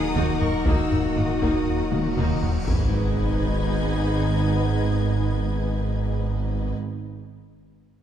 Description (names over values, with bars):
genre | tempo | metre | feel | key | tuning
cinematic, hybrid orchestral and electronic film score | 119 BPM | 4/4 | straight | G# minor | A4 = 439 Hz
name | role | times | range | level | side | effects
rich symphonic violin section | melody | 0.0-6.7 s | C#6 to G#6 | -40 LUFS | left 2 dB | none
bright symphonic violin section | second line | 0.0-6.7 s | A#4 to F#5 | -35 LUFS | left 5 dB | none
analog string pad | sustained chords | 0.0-6.7 s | D#3 to B4 | -32 LUFS | equal | ensemble chorus
clear French horn section | sustained chords | 0.0-6.7 s | A#3 to D#4 | -29 LUFS | left 4 dB | none
glassy wavetable pluck | arpeggios | 0.0-2.6 s | D#3 to D#4 | -33 LUFS | right 3 dB | none
smooth gliding synth bass | riff | 0.0-2.6 s | D#2 to D#3 | -30 LUFS | left 2 dB | none
rich symphonic cello section | bass | 0.0-6.7 s | G#2 to A#4 | -31 LUFS | right 3 dB | none
warm sub bass | bass | 0.0-6.7 s | D#1 to G#1 | -30 LUFS | left 1 dB | none
rich symphonic viola section | accompaniment | 0.2-6.7 s | A#3 to G#4 | -35 LUFS | right 1 dB | none
clear symphonic double bass section | bass | 0.2-6.7 s | G#1 to D#2 | -28 LUFS | right 4 dB | none
taiko ensemble | drums | 0.2-3.6 s | none | -27 LUFS | equal | none
cymbal swell and sub drop | sound effects | 2.1-4.7 s | none | -31 LUFS | equal | none
room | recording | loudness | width
wet scoring stage reverb, RT60 2.1 s | dark, warm production | -21 LUFS | side -10 dB against mid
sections
0.0-2.7 A section; 2.7-6.7 B section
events
cymbal swell 2.1-2.7; drum fill 1.9-2.7; impact 2.7-4.7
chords
0.0 D#m; 2.7 G#m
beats
0.16 | 0.66 1.17 1.67 2.17 | 2.68 3.18 3.69 4.19 | 4.69 5.20 5.70 6.21